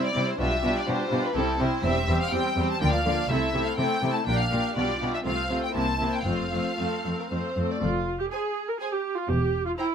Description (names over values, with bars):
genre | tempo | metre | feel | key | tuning
quick classical-period movement for string orchestra | 123 BPM | 3/4 | rubato | F major | A4 = 440 Hz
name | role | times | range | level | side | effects
rich studio violin section | melody | 0.0-9.9 s | A4 to Bb5 | -29 LUFS | left 2 dB | none
rich studio violin section | second line | 0.0-9.9 s | D4 to Ab5 | -31 LUFS | right 2 dB | none
warm studio viola section | accompaniment | 0.0-9.9 s | F3 to Bb4 | -29 LUFS | equal | none
rich symphonic cello section | bass | 0.2-9.7 s | E2 to D3 | -30 LUFS | equal | none
rich studio double bass section | bass | 0.4-9.7 s | E1 to D2 | -30 LUFS | equal | none
room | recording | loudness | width
little or no reverb | close, detailed microphones | -24 LUFS | side -7 dB against mid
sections
0.0-7.8 A section; 7.8-9.9 B section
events
none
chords
0.4 G7/B; 1.4 C; 1.8 C/E; 2.8 Bb/D; 3.3 Am/C; 4.3 Gm/Bb; 4.8 G7/B; 5.3 F/C; 5.7 C7; 6.3 F; 7.8 Fm; 9.3 C/E (rootless)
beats
| 0.40 0.88 1.36 | 1.84 2.33 2.81 | 3.30 3.78 4.27 | 4.76 5.25 5.75 | 6.27 6.79 7.32 | 7.83 8.32 8.81 | 9.30 9.79